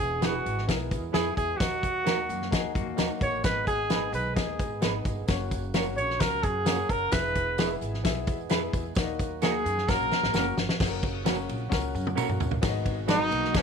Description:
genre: uptempo 1960s-style soul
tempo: 130 BPM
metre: 4/4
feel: straight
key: unclear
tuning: A4 = 441 Hz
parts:
  - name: mellow trumpet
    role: melody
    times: 0.0-13.6 s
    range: C#4 to C#5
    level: -28 LUFS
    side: right 1 dB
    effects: none
  - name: clear concert grand piano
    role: accompaniment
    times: 0.0-13.6 s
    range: G#2 to F#5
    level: -36 LUFS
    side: left 14 dB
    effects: none
  - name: percussive tonewheel organ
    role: sustained chords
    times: 0.0-13.6 s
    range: B2 to G#4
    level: -40 LUFS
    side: right 14 dB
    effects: overdrive, lush chorus
  - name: upright bass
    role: bass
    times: 0.0-13.6 s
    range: E1 to G#2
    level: -35 LUFS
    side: equal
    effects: none
  - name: tambourine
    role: percussion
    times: 0.0-13.6 s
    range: none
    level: -47 LUFS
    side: right 18 dB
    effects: none
  - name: electric guitar through a small old amp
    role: stabs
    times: 0.2-13.2 s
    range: G#3 to B4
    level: -33 LUFS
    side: right 14 dB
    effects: phaser, slapback echo
  - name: natural country drum kit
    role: drums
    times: 0.2-13.6 s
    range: crash cymbal, hi-hat, kick drum, ride cymbal, snare drum, toms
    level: -28 LUFS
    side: left 1 dB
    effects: none
  - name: mellow electric guitar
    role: riff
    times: 2.3-3.4, 9.4-13.6 s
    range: F#3 to G#4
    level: -36 LUFS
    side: left 14 dB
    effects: spring reverb
room: studio ambience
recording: 1960s-style stereo with parts hard left and right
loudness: -25 LUFS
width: side -6 dB against mid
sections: 0.0-10.8 A section; 10.8-12.6 B section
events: trumpet solo 0.0-10.8; drum fill 9.9-10.8, 11.7-12.6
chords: 0.0 E; 1.6 D#m; 3.4 G#m; 5.3 F#; 7.1 E; 9.0 D#m; 9.9 F#; 12.6 G#m7

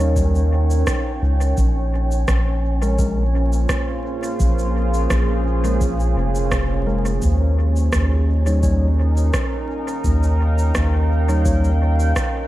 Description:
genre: ambient dub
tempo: 85 BPM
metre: 4/4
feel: swing 54% on 16ths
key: unclear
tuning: A4 = 435 Hz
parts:
  - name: deep dark ambient pad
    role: sustained chords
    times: 0.0-12.5 s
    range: Bb3 to G5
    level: -26 LUFS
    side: right 1 dB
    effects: chorus, built-in reverb
  - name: mellow tine electric piano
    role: stabs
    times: 0.0-11.7 s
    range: G3 to Db5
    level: -29 LUFS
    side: left 2 dB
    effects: low-pass filter, dub echo
  - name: soft dub sub bass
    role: bass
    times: 0.0-12.1 s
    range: F1 to Eb2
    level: -18 LUFS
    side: equal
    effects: tube saturation
  - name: electronic shaker and rim click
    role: drums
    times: 0.0-12.3 s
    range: none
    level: -28 LUFS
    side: right 1 dB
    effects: overdrive, dub echo
  - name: wind-like tuned noise texture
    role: texture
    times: 0.0-12.5 s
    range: Db4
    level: -31 LUFS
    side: right 2 dB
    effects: built-in reverb
  - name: electronic kick drum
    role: drums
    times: 0.2-12.3 s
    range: none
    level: -24 LUFS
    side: equal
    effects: none
room: little or no reverb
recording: vinyl crackle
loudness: -16 LUFS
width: side -15 dB against mid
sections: 0.0-12.5 A section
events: filter sweep on tine electric piano 0.0-12.5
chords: 0.0 Eb7; 1.6 Bbm7; 7.2 Eb7

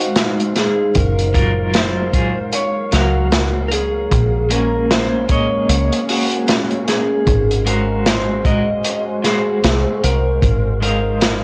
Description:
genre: trip hop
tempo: 76 BPM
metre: 4/4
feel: swing 58% on 16ths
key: unclear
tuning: A4 = 440 Hz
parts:
  - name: clean lap steel guitar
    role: melody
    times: 0.0-11.4 s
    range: Gb4 to Eb5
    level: -23 LUFS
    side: equal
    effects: cassette tape, dub echo
  - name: electric guitar at the edge of break-up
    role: accompaniment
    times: 0.0-11.4 s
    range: Gb3 to F5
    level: -25 LUFS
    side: equal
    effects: tremolo, cassette tape
  - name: deep dark ambient pad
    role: sustained chords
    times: 0.0-11.4 s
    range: F3 to F5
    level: -28 LUFS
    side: equal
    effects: chorus, built-in reverb, cassette tape
  - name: crunchy breakbeat drum kit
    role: drums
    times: 0.0-11.4 s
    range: hi-hat, kick drum, snare drum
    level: -21 LUFS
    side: equal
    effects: vintage 12-bit sampler grit, cassette tape
  - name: wind-like tuned noise texture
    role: texture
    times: 0.0-11.4 s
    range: Ab3 to F5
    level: -33 LUFS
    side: equal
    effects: none
  - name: deep dub fingered electric bass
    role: bass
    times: 1.0-11.4 s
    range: Gb1 to Db2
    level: -22 LUFS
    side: equal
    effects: none
room: light reverb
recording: home recording on cassette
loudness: -17 LUFS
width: mono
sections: 0.0-11.4 A section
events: none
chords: 0.0 Ab6; 1.0 Gbmaj7; 4.1 Bbm7; 7.3 Ab7; 10.4 Ab69

